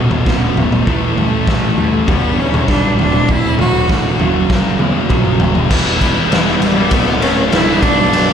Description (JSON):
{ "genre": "quiet-loud alternative rock", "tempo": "99 BPM", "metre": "4/4", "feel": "straight", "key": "unclear", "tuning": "A4 = 439 Hz", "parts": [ { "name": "electric guitar through a small old amp", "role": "arpeggios", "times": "0.0-5.7 s", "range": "B1 to A3", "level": "-23 LUFS", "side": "right 5 dB", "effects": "tremolo" }, { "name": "high-gain distorted guitar", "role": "riff", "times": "0.0-8.3 s", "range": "B1 to E4", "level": "-19 LUFS", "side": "left 11 dB", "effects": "distortion, slapback echo" }, { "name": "thick fuzz guitar", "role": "riff", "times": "0.0-8.3 s", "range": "B1 to E4", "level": "-22 LUFS", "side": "right 12 dB", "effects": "distortion, slapback echo" }, { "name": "fuzz picked electric bass", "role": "bass", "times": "0.0-8.3 s", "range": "B0 to E2", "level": "-21 LUFS", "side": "equal", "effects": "overdrive" }, { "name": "raw garage drum kit", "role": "drums", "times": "0.1-8.3 s", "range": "crash cymbal, kick drum, ride cymbal, snare drum, toms", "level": "-15 LUFS", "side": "equal", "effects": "none" }, { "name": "clear cello", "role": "melody", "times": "0.3-8.3 s", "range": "G3 to F#4", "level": "-18 LUFS", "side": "equal", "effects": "slapback echo" }, { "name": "tonewheel organ", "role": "sustained chords", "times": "5.7-8.3 s", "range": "A4 to E6", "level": "-28 LUFS", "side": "right 1 dB", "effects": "none" }, { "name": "distorted electric guitar", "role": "riff", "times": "5.7-8.3 s", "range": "B1 to E3", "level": "-22 LUFS", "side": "equal", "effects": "none" } ], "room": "light reverb, small room ambience", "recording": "none", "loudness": "-11 LUFS", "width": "side -8 dB against mid", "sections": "0.0-5.7 A section; 5.7-8.3 B section", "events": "drum fill 4.5-5.7", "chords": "0.0 Bm; 0.9 A5; 2.1 G; 3.0 D; 4.2 F#; 5.7 Em; 6.9 D; 7.8 Bm", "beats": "0.27 | 0.88 1.48 2.09 2.69 | 3.30 3.90 4.51 5.11 | 5.72 6.32 6.92 7.53 | 8.13" }